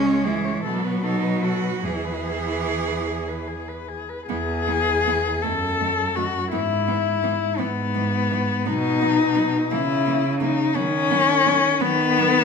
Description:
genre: classical, lyrical piece for cello ensemble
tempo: 48-58 BPM (dotted quarters)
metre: 6/8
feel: rubato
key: E major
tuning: A4 = 440 Hz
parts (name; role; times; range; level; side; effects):
- warm cello; melody; 0.0-12.4 s; B3 to C#5; -22 LUFS; left 6 dB; none
- rich cello; second line; 0.0-12.3 s; G#3 to G#4; -30 LUFS; right 9 dB; none
- warm cello; accompaniment; 0.0-12.3 s; D#3 to C#4; -28 LUFS; left 1 dB; none
- warm cello; bass; 0.0-12.4 s; C#2 to D#3; -26 LUFS; right 3 dB; none
room: wet recital hall reverb, RT60 1.6 s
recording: none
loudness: -20 LUFS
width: side -5 dB against mid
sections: 0.0-4.3 A section; 4.3-12.4 B section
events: none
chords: 0.0 C#5; 0.7 B5; 1.9 E; 5.4 D#dim/F#; 6.5 E/G#; 8.7 B; 9.7 A#dim/C# (rootless); 10.8 B/D#

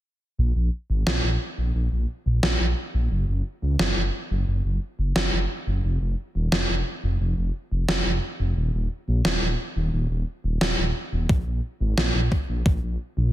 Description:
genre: synthwave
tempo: 88 BPM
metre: 4/4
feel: straight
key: unclear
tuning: A4 = 442 Hz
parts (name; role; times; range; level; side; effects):
- dark detuned saw bass; bass; 0.4-13.3 s; Eb1 to Db2; -23 LUFS; equal; sidechain pumping
- electronic snare drum; drums; 1.1-12.1 s; none; -25 LUFS; right 1 dB; gated reverb, gated reverb snare, overdrive
- electronic kick drum; drums; 11.3-12.8 s; none; -21 LUFS; equal; overdrive
room: little or no reverb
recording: dense, heavily limited modern master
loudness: -22 LUFS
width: side -14 dB against mid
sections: 0.4-13.3 A section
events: filter sweep on detuned saw bass 0.4-13.3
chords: none

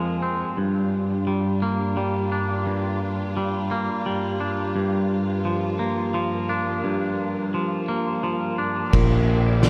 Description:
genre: post-rock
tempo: 86 BPM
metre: 3/4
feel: straight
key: unclear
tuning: A4 = 436 Hz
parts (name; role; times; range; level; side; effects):
- warm symphonic string section; sustained chords; 0.0-9.7 s; F2 to D5; -32 LUFS; equal; none
- twangy electric guitar; arpeggios; 0.0-9.7 s; F2 to D4; -26 LUFS; equal; tape echo
- vibraphone with medium mallets; arpeggios; 8.9-9.7 s; Bb4 to D5; -31 LUFS; equal; tape echo
- fuzz fingered electric bass; bass; 8.9-9.7 s; Bb1; -22 LUFS; equal; overdrive
- oversized low-tuned drum kit; drums; 8.9-9.7 s; crash cymbal, kick drum, ride cymbal, snare drum; -24 LUFS; equal; none
room: light reverb, small room ambience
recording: none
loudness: -24 LUFS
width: mono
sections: 0.0-8.9 A section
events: none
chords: 0.0 Fm; 0.6 Gm7; 8.9 Bb6

